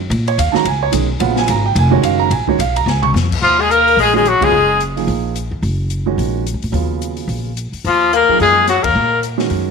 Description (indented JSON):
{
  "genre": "modal jazz",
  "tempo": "217 BPM",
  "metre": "4/4",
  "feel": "swing 58% on 8ths",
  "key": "Eb minor",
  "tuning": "A4 = 440 Hz",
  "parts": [
    { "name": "upright bass", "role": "bass", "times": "0.0-9.7 s", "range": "F1 to Bb2", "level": "-19 LUFS", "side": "left 1 dB", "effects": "none" },
    { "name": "swinging big-band drum kit", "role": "drums", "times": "0.1-9.6 s", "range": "crash cymbal, hi-hat, kick drum, ride cymbal, snare drum, toms", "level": "-25 LUFS", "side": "left 8 dB", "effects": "none" },
    { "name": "warm grand piano", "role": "accompaniment", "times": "0.3-9.7 s", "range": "Db3 to Db6", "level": "-18 LUFS", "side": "right 11 dB", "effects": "none" },
    { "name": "clear trumpet", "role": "melody", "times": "3.4-4.8, 7.9-9.2 s", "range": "F4 to Bb4", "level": "-13 LUFS", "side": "left 1 dB", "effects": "none" },
    { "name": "bright tenor saxophone", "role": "second line", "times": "3.4-4.8, 7.9-9.2 s", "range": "F3 to Bb3", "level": "-18 LUFS", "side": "left 12 dB", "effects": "none" }
  ],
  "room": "light reverb, small room ambience",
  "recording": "1960s-style stereo with parts hard left and right, lossy compression artefacts",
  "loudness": "-13 LUFS",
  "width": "side -5 dB against mid",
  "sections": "0.0-3.4 A section; 3.4-9.7 B section",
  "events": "drum fill 2.9; band accent 4.4, 8.8",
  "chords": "0.0 Ebm11",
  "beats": "| 0.10 0.38 0.65 0.93 | 1.21 1.48 1.76 2.04 | 2.31 2.59 2.87 3.14 | 3.42 3.70 3.97 4.25 | 4.53 4.80 5.08 5.36 | 5.63 5.91 6.19 6.46 | 6.74 7.02 7.29 7.57 | 7.84 8.12 8.40 8.67 | 8.95 9.22 9.50"
}